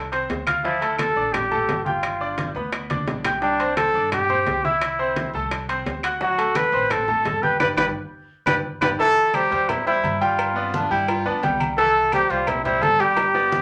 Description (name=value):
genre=latin, salsa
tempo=172 BPM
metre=4/4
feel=straight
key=C major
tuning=A4 = 439 Hz
part: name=bright grand piano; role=accompaniment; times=0.0-13.6 s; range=E3 to G6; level=-27 LUFS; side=equal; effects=none
part: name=upright bass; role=bass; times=0.0-13.6 s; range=G1 to G2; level=-38 LUFS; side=equal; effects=none
part: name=bongos and cowbell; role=percussion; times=0.1-13.6 s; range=none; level=-37 LUFS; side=equal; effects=none
part: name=congas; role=percussion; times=0.1-13.6 s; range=none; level=-35 LUFS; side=equal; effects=none
part: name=timbales and agogo bells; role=percussion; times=0.1-13.6 s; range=none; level=-33 LUFS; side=equal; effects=none
part: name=claves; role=percussion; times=0.5-13.3 s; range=none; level=-36 LUFS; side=equal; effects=none
part: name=warm trumpet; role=melody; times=0.6-13.6 s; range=D4 to B4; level=-23 LUFS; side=equal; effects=none
part: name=mellow baritone saxophone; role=second line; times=10.5-11.7 s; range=B3 to F4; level=-30 LUFS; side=equal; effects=none
room=wet club reverb, RT60 0.6 s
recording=none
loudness=-21 LUFS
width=mono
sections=0.0-9.0 A section; 9.0-13.6 B section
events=drum fill 2.9-3.4, 8.5-9.0, 13.2-13.6; band accent 7.6-9.0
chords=0.0 F5; 0.6 Dmadd9; 2.0 G; 3.4 Csus2; 4.8 Am/C; 6.2 D7; 7.6 G; 9.0 C; 10.4 G7; 11.8 C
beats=0.29 | 0.64 0.99 1.34 1.69 | 2.04 2.38 2.73 3.08 | 3.43 3.77 4.12 4.47 | 4.82 5.17 5.51 5.86 | 6.21 6.56 6.91 7.25 | 7.60 7.95 8.30 8.65 | 9.00 9.35 9.69 10.04 | 10.39 10.74 11.09 11.43 | 11.78 12.13 12.47 12.82 | 13.17 13.52